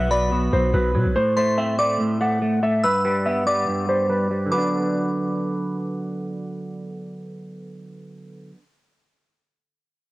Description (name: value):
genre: hip hop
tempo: 143 BPM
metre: 4/4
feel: half-time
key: B phrygian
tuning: A4 = 440 Hz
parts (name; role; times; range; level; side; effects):
- dark baby grand piano; melody; 0.0-5.7 s; B4 to F#5; -23 LUFS; equal; low-pass filter
- glassy synth bell; second line; 0.0-5.7 s; B5 to E6; -27 LUFS; left 1 dB; chorus, tape echo
- semi-hollow electric guitar; accompaniment; 0.0-8.6 s; G2 to D4; -24 LUFS; right 1 dB; analog chorus, low-pass filter
- long sustained 808-style bass; bass; 0.0-1.2 s; B1 to B2; -22 LUFS; equal; none
room: light reverb, studio reverb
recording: home recording on cassette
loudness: -19 LUFS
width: side -19 dB against mid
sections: 0.0-4.5 A section; 4.5-7.9 B section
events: filter sweep 0.0-4.5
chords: 0.0 B5; 1.2 Am; 2.8 G; 4.5 Bm